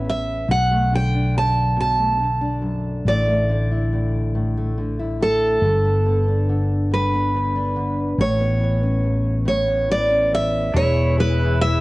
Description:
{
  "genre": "acoustic folk-pop ballad",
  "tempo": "47 BPM (dotted quarters)",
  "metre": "6/8",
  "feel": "straight",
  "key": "unclear",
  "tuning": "A4 = 439 Hz",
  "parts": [
    { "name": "picked steel-string acoustic guitar", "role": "melody", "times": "0.0-11.8 s", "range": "A4 to A5", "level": "-21 LUFS", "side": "right 1 dB", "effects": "cassette tape, analog delay" },
    { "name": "fingerpicked steel-string acoustic guitar", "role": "accompaniment", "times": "0.0-11.8 s", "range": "E2 to A4", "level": "-26 LUFS", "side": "left 1 dB", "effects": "cassette tape" },
    { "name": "mellow fretless electric bass", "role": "bass", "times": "0.0-11.8 s", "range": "E1 to B1", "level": "-21 LUFS", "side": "equal", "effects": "lush chorus" },
    { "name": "pedal steel guitar", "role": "second line", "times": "10.7-11.8 s", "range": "E4", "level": "-28 LUFS", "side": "equal", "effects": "cassette tape, analog delay" },
    { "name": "analog string pad", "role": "sustained chords", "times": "10.8-11.8 s", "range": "E3 to B4", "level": "-28 LUFS", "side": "left 2 dB", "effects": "ensemble chorus, cassette tape" }
  ],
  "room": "light reverb",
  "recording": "home recording on cassette",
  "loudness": "-17 LUFS",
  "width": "side -20 dB against mid",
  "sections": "0.0-10.7 A section; 10.7-11.8 B section",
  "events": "none",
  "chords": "0.5 Bm7; 3.1 Dsus2/A; 5.6 Gadd9; 8.2 Aadd9; 10.7 E"
}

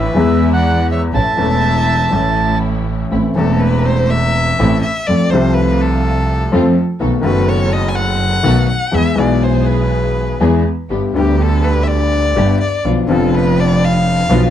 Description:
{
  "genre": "tango",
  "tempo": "123 BPM",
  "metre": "4/4",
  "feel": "rubato",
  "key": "A major, A minor from 3.1 s",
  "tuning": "A4 = 440 Hz",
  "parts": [
    { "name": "bandoneon", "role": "melody", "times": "0.0-2.6 s", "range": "E5 to A5", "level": "-18 LUFS", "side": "right 2 dB", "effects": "plate reverb" },
    { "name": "rich violin", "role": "second line", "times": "0.0-14.5 s", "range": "G4 to G#5", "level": "-20 LUFS", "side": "left 2 dB", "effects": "none" },
    { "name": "clear upright piano", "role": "accompaniment", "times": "0.0-14.5 s", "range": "E1 to A4", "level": "-16 LUFS", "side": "left 3 dB", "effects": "none" },
    { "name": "warm symphonic string section", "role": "stabs", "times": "0.0-14.5 s", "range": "G#3 to A4", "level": "-24 LUFS", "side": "right 2 dB", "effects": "none" },
    { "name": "rich double bass", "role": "bass", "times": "0.0-14.5 s", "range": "E1 to F2", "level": "-16 LUFS", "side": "right 2 dB", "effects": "none" }
  ],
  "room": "moderate studio reverb, RT60 0.6 s",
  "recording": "dark, warm production",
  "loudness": "-12 LUFS",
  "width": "side -10 dB against mid",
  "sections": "0.0-3.1 A section; 3.1-14.5 B section",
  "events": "violin solo 3.1-14.5",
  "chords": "0.2 E; 1.1 A; 3.1 Am; 5.1 F; 7.0 B7; 8.9 E; 10.9 G; 12.8 Bdim"
}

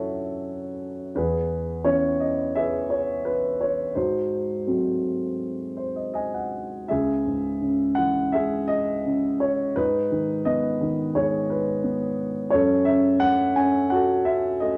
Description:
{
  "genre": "classical, lyrical solo piano",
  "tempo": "85 BPM",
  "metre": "4/4",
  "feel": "rubato",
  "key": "C# minor from 6.9 s",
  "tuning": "A4 = 440 Hz",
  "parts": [
    { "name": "dark grand piano", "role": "solo", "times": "0.0-14.8 s", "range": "C#2 to A5", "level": "-24 LUFS", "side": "equal", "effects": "none" }
  ],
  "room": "moderate studio reverb, RT60 0.5 s",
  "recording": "none",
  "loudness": "-24 LUFS",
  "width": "mono",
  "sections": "0.0-6.9 A section; 6.9-14.8 B section",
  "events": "grand piano fill 5.4-6.9",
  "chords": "0.0 F#m7; 1.2 C#m7/E; 4.0 G#7b9; 6.9 C#m; 9.8 G#m; 12.5 F#m"
}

